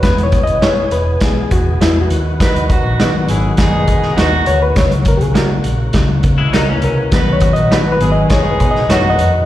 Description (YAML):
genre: uptempo 1960s-style soul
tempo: 102 BPM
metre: 4/4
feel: straight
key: B major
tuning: A4 = 440 Hz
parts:
  - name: bright reed electric piano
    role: accompaniment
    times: 0.0-9.5 s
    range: C#3 to D#5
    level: -16 LUFS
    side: left 2 dB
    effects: plate reverb, slapback echo
  - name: tonewheel organ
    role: sustained chords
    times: 0.0-9.5 s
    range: C#3 to G#4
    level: -25 LUFS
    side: right 1 dB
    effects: slow rotary speaker, overdrive, plate reverb
  - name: vintage muted fingered electric bass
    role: bass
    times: 0.0-9.4 s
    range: E1 to D#3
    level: -17 LUFS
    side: equal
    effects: none
  - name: vintage drum kit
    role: drums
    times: 0.0-9.3 s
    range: hi-hat, kick drum, snare drum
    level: -16 LUFS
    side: equal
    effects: none
  - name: electric guitar through a small old amp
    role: stabs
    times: 0.6-9.0 s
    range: A#3 to B4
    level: -22 LUFS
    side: right 5 dB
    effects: wide subtle chorus, plate reverb, slapback echo
  - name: mellow horn section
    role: second line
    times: 2.4-9.3 s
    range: B3 to B4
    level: -18 LUFS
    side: equal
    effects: plate reverb, slapback echo
  - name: clean electric guitar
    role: riff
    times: 6.4-7.1 s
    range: E3 to E4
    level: -19 LUFS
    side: left 5 dB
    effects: analog chorus, slapback echo
room: moderate club reverb, RT60 0.5 s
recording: live gig heard through the venue's PA, recital hall reverb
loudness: -11 LUFS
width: side -13 dB against mid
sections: 0.0-9.5 A section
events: reed electric piano solo 0.0-9.5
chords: 0.0 E; 2.1 B; 4.8 F#; 7.1 B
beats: | 0.03 0.62 1.22 1.81 | 2.40 2.99 3.58 4.17 | 4.77 5.36 5.95 6.54 | 7.12 7.71 8.30 8.89